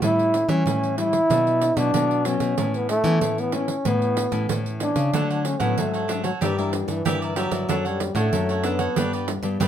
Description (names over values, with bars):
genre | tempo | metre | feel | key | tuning
samba and choro | 94 BPM | 4/4 | straight | D major | A4 = 438 Hz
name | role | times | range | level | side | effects
breathy trombone | melody | 0.0-9.3 s | E3 to E4 | -23 LUFS | equal | none
nylon-string guitar | accompaniment | 0.0-9.7 s | G2 to A4 | -29 LUFS | left 5 dB | none
nylon-string guitar | bass | 0.0-9.7 s | F#2 to E3 | -26 LUFS | equal | none
pandeiro | percussion | 0.0-9.7 s | none | -28 LUFS | right 6 dB | none
cavaquinho | accompaniment | 5.1-9.7 s | D4 to F#5 | -29 LUFS | right 4 dB | none
room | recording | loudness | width
light reverb | minimal, uncompressed stereo recording | -20 LUFS | side -10 dB against mid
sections
0.0-9.7 A section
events
none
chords
0.0 A7; 1.3 Esus2/B; 2.6 Aadd9; 5.1 Dmaj7; 6.4 Gm6; 7.7 Dmaj7/F#; 9.0 G